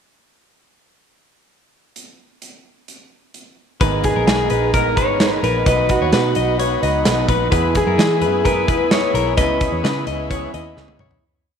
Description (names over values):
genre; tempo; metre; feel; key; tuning
jangly indie pop; 130 BPM; 4/4; straight; unclear; A4 = 440 Hz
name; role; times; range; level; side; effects
big rock drum kit; drums; 2.0-11.2 s; hi-hat, kick drum, snare drum, toms; -21 LUFS; right 1 dB; none
combo organ; accompaniment; 3.8-11.2 s; B3 to B4; -27 LUFS; left 9 dB; none
electric guitar through a small old amp; accompaniment; 3.8-11.2 s; G#2 to B4; -24 LUFS; right 11 dB; ensemble chorus
direct-recorded clean electric guitar; arpeggios; 3.8-11.2 s; G#4 to D#5; -22 LUFS; left 8 dB; none
vintage muted picked electric bass; bass; 3.8-11.2 s; G#1 to E3; -23 LUFS; right 1 dB; none
electric guitar through a small old amp; melody; 4.0-10.7 s; F#4 to C#5; -21 LUFS; equal; spring reverb, tape echo
room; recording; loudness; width
moderate echo chamber reverb, RT60 1.9 s, small room ambience; 1960s-style stereo with parts hard left and right; -15 LUFS; side -7 dB against mid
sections
2.0-3.8 pickup bar; 3.8-11.2 verse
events
fade-out 9.4-11.2; drum fill 10.8-11.2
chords
2.0 N.C.; 3.8 G#madd9; 5.7 B; 7.5 E; 9.4 C#m7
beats
| 1.96 2.42 2.88 3.35 | 3.81 4.28 4.74 5.20 | 5.67 6.13 6.59 7.06 | 7.52 7.98 8.45 8.91 | 9.37 9.84 10.30 10.76